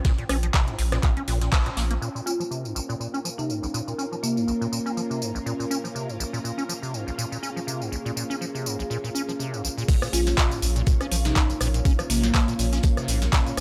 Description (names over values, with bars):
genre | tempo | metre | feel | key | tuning
acid house | 122 BPM | 4/4 | swing 56% on 16ths | Bb dorian | A4 = 439 Hz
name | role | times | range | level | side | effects
acid bass, square | riff | 0.0-13.6 s | Bb1 to Db4 | -33 LUFS | equal | analog chorus, sidechain pumping, analog delay
booming analog drum machine | drums | 0.0-13.6 s | crash cymbal, handclaps, hi-hat, rim click, snare drum, tambourine | -32 LUFS | equal | none
electronic kick drum | drums | 0.0-1.6, 9.9-13.4 s | none | -24 LUFS | equal | none
vintage brush drum kit | drums | 0.0-1.9, 9.9-13.6 s | hi-hat, snare drum | -41 LUFS | equal | none
ethereal airy pad | texture | 0.0-13.6 s | Db4 to G5 | -39 LUFS | equal | ensemble chorus, built-in reverb, sidechain pumping
round analog bass | bass | 0.3-2.0, 10.1-13.6 s | Bb1 | -27 LUFS | equal | tube saturation, sidechain pumping
string machine, full ensemble | sustained chords | 2.0-13.6 s | Bb3 to Db5 | -39 LUFS | equal | ensemble chorus, sidechain pumping
marimba with soft mallets | melody | 2.3-4.4, 10.1-12.3 s | Bb3 to F4 | -32 LUFS | equal | tape echo
room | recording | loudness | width
light reverb | dry, gritty hardware recording | -25 LUFS | mono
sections
0.0-2.0 A section; 2.0-9.9 B section; 9.9-13.6 C section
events
band accent 1.5; drop 9.9-13.6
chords
0.0 Bbm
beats
| 0.05 0.54 1.03 1.52 | 2.02 2.51 3.00 3.49 | 3.98 4.47 4.97 5.46 | 5.95 6.44 6.93 7.43 | 7.92 8.41 8.90 9.39 | 9.88 10.38 10.87 11.36 | 11.85 12.34 12.84 13.33